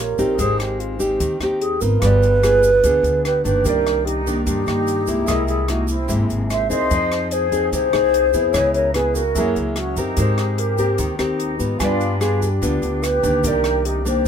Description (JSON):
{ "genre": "bossa nova", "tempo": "147 BPM", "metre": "4/4", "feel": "straight", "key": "C minor", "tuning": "A4 = 439 Hz", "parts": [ { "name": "mellow hollow alto flute", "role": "melody", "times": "0.0-14.3 s", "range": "E4 to E5", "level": "-20 LUFS", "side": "right 1 dB", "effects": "none" }, { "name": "nylon-string guitar", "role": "accompaniment", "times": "0.0-14.3 s", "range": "G2 to A#4", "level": "-23 LUFS", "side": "left 1 dB", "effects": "none" }, { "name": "warm concert grand piano", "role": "accompaniment", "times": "0.0-14.3 s", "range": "Eb4 to Ab5", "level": "-30 LUFS", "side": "right 4 dB", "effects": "none" }, { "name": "upright bass", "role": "bass", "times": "0.0-14.3 s", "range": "G1 to Ab2", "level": "-23 LUFS", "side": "equal", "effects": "none" }, { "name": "compact cocktail drum kit", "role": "drums", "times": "0.2-14.3 s", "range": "hi-hat, kick drum, rim click", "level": "-28 LUFS", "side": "left 1 dB", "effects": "none" }, { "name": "tube shaker", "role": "percussion", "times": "0.2-14.3 s", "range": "none", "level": "-36 LUFS", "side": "right 7 dB", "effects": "none" }, { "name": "mellow flute section", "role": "second line", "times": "3.2-14.3 s", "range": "C4 to C5", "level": "-27 LUFS", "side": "left 2 dB", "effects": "none" } ], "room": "little or no reverb", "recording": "minimal, uncompressed stereo recording", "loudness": "-16 LUFS", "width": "side -8 dB against mid", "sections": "0.0-14.3 A section", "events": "none", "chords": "0.4 Abmaj7; 2.0 G7b9; 3.6 Cm9; 5.3 C7alt; 6.9 Fm7; 8.5 Dbm7; 9.4 F#9; 10.2 Abmaj9; 11.8 G7b9; 13.4 Cm9", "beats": "| 0.39 0.80 1.21 1.61 | 2.02 2.43 2.83 3.24 | 3.65 4.06 4.47 4.87 | 5.28 5.69 6.10 6.50 | 6.91 7.32 7.73 8.13 | 8.54 8.95 9.36 9.77 | 10.17 10.58 10.99 11.40 | 11.80 12.21 12.62 13.03 | 13.43 13.84 14.25" }